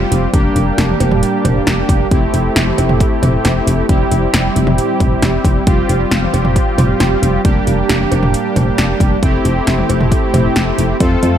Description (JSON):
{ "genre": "synth-pop", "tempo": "135 BPM", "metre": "4/4", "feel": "straight", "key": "unclear", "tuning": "A4 = 438 Hz", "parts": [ { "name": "analog synth brass", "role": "accompaniment", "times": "0.0-11.4 s", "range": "G3 to A4", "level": "-16 LUFS", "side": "right 1 dB", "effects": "chorus" }, { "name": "solid FM bass", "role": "bass", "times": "0.0-11.4 s", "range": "F1 to F2", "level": "-16 LUFS", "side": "equal", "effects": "none" }, { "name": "deep house drum kit", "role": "drums", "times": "0.1-11.3 s", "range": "cowbell, hi-hat, kick drum, snare drum, toms", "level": "-16 LUFS", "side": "equal", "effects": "overdrive" } ], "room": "light reverb, digital ambience", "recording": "none", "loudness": "-11 LUFS", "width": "side -10 dB against mid", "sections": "0.0-11.4 A section", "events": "none", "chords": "0.3 Gm/F; 2.1 Am7/F; 3.9 C/F; 5.7 Fsus2; 7.4 Gm/F; 9.2 Am7/F" }